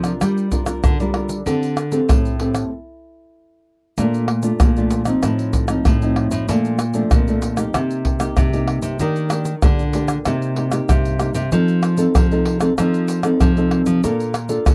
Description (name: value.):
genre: samba and choro.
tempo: 95 BPM.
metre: 4/4.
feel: straight.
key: Bb major from 4.0 s.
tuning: A4 = 441 Hz.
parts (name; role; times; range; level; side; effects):
nylon-string guitar; accompaniment; 0.0-14.7 s; F2 to Bb4; -23 LUFS; equal; none.
nylon-string guitar; bass; 0.0-14.7 s; A2 to G3; -23 LUFS; equal; none.
egg shaker, pandeiro, tamborim and surdo; percussion; 0.0-14.7 s; none; -21 LUFS; equal; none.
room: little or no reverb.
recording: dry, close 1970s-style studio recording.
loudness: -18 LUFS.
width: mono.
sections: 0.0-4.0 A section; 4.0-14.7 B section.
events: stop 2.7-4.0.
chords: 0.2 Gm7; 1.5 D7sus4; 4.0 Bbmaj7; 5.2 F7/A; 6.5 Bbmaj7; 7.7 Cm7; 9.0 Ebmaj7; 10.3 Cm7; 11.5 F7; 14.0 Bbmaj7.